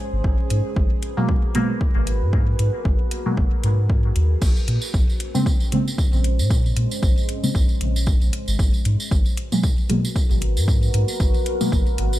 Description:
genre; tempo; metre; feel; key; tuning
dub techno; 115 BPM; 4/4; swing 56% on 16ths; Bb phrygian; A4 = 440 Hz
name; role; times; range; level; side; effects
deep dark ambient pad; sustained chords; 0.0-12.2 s; Ab3 to C5; -30 LUFS; equal; chorus, built-in reverb, sidechain pumping
bubbling stepped-filter texture; texture; 0.0-4.4 s; Ab4; -40 LUFS; right 1 dB; chorus, built-in reverb, sidechain pumping
soft dub sub bass; bass; 0.1-12.2 s; Ab1 to Bb2; -21 LUFS; equal; sidechain pumping
electronic kick drum; drums; 0.2-11.8 s; none; -20 LUFS; equal; overdrive, small room ambience
deep house drum kit; drums; 0.5-12.1 s; crash cymbal, hi-hat; -33 LUFS; left 2 dB; overdrive, small room ambience
deep mellow chord stab; stabs; 1.2-11.7 s; Cb3 to C4; -24 LUFS; equal; chorus, phaser, sidechain pumping, dub echo
tambourine; percussion; 4.4-12.2 s; none; -33 LUFS; right 3 dB; none
room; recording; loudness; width
little or no reverb; vinyl crackle; -18 LUFS; side -15 dB against mid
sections
0.0-4.4 A section; 4.4-12.2 A section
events
none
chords
0.2 Abm9; 4.4 Bbm9; 8.6 Abm9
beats
| 0.24 0.77 1.29 1.81 | 2.33 2.85 3.37 3.90 | 4.42 4.94 5.46 5.98 | 6.50 7.03 7.55 8.07 | 8.59 9.11 9.63 10.16 | 10.68 11.20 11.72

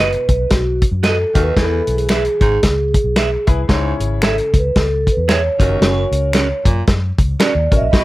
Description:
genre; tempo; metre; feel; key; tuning
uptempo 1960s-style soul; 113 BPM; 4/4; swing 59% on 8ths; unclear; A4 = 441 Hz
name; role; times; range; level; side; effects
vibraphone with soft mallets; melody; 0.0-8.0 s; F#4 to E5; -19 LUFS; right 1 dB; plate reverb
clear concert grand piano; accompaniment; 0.0-8.0 s; B2 to G#5; -25 LUFS; left 5 dB; plate reverb
clean electric guitar; stabs; 0.0-7.5 s; C#4 to E5; -22 LUFS; right 8 dB; plate reverb
vintage muted fingered electric bass; bass; 0.0-8.0 s; F#1 to F#2; -19 LUFS; equal; none
warm soul drum kit; drums; 0.1-8.0 s; hi-hat, kick drum, snare drum; -15 LUFS; equal; none
finger snap; percussion; 1.0-7.5 s; none; -26 LUFS; left 2 dB; none
raspy baritone saxophone; riff; 1.3-8.0 s; D#2 to B2; -23 LUFS; right 2 dB; none
warm studio string section; second line; 7.9-8.0 s; B4 to B5; -29 LUFS; left 3 dB; none
room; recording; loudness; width
light reverb; none; -13 LUFS; side -17 dB against mid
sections
0.0-8.0 A section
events
vibraphone solo 0.0-8.0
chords
0.0 B; 1.6 E; 3.7 C#m; 5.5 F#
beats
0.51 1.04 | 1.57 2.10 2.63 3.16 | 3.69 4.22 4.75 5.28 | 5.81 6.34 6.87 7.40 | 7.93

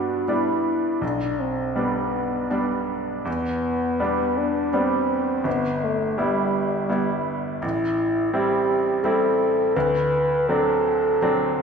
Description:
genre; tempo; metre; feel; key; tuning
classical, romantic duo for French horn and grand piano; 79-86 BPM; 3/4; rubato; unclear; A4 = 440 Hz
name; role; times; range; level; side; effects
warm French horn; melody; 0.0-11.6 s; G3 to B4; -23 LUFS; left 1 dB; none
bright grand piano; accompaniment; 0.0-11.6 s; G1 to E4; -24 LUFS; right 1 dB; none
room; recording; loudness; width
wet recital hall reverb, RT60 1.5 s; recorded in a church or concert hall; -20 LUFS; side -6 dB against mid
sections
0.0-11.6 A section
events
none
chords
0.0 G; 1.0 G/B; 3.3 Em7; 5.5 Em/G; 7.6 Am7; 9.8 D7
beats
0.27 | 1.02 1.77 2.52 | 3.27 4.01 4.74 | 5.46 6.19 6.91 | 7.63 8.33 9.04 | 9.75 10.48 11.20

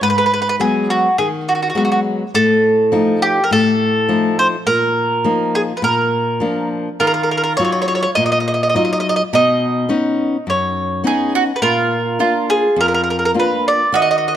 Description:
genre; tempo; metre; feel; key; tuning
italian folk, Italian serenade; 103 BPM; 4/4; straight; unclear; A4 = 440 Hz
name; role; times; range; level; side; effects
mandolin; melody; 0.0-14.3 s; Gb4 to Eb5; -16 LUFS; right 2 dB; none
flamenco guitar; accompaniment; 0.0-14.4 s; F2 to F4; -19 LUFS; left 3 dB; none
mandolin; second line; 7.0-14.4 s; D#4 to Ab4; -22 LUFS; right 6 dB; none
room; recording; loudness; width
moderate recital hall reverb, RT60 1.8 s; close, detailed microphones; -14 LUFS; side -10 dB against mid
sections
0.0-14.4 A section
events
none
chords
0.0 Abm7; 2.3 F7/A; 4.7 Bbsus4; 5.8 Bb; 7.0 Ebmadd9; 9.3 Badd9; 11.6 Bb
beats
| 0.01 0.59 1.18 1.76 | 2.34 2.92 3.50 4.08 | 4.66 5.24 5.83 6.41 | 7.00 7.59 8.17 8.75 | 9.33 9.90 10.47 11.05 | 11.62 12.20 12.77 13.35 | 13.93

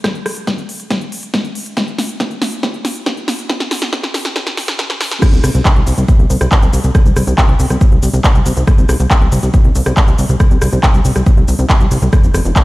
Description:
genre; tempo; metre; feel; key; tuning
uplifting trance; 139 BPM; 4/4; straight; unclear; A4 = 440 Hz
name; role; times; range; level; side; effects
big-room dance drum kit; drums; 0.0-12.6 s; crash cymbal, handclaps, hi-hat, rim click, shaker, snare drum; -18 LUFS; equal; overdrive
electronic kick drum; drums; 0.0-12.6 s; none; -11 LUFS; equal; high-pass filter on kick, high-pass filter on room
plucky analog bass; bass; 5.3-12.5 s; F1 to C2; -13 LUFS; equal; sidechain pumping
room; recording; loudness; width
little or no reverb; played on a big sound system in a bare room, stone room reverb, high-pass filter; -11 LUFS; side -19 dB against mid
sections
0.0-5.2 A section; 5.2-12.6 B section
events
build-up 0.0-5.2; drum fill 0.0-5.2; filter sweep 0.0-5.2; drop 5.2-12.6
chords
none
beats
| 0.04 0.47 0.91 1.34 | 1.77 2.20 2.63 3.06 | 3.50 3.93 4.36 4.79 | 5.22 5.65 6.08 6.52 | 6.95 7.38 7.81 8.24 | 8.68 9.11 9.54 9.97 | 10.40 10.83 11.27 11.70 | 12.13 12.56

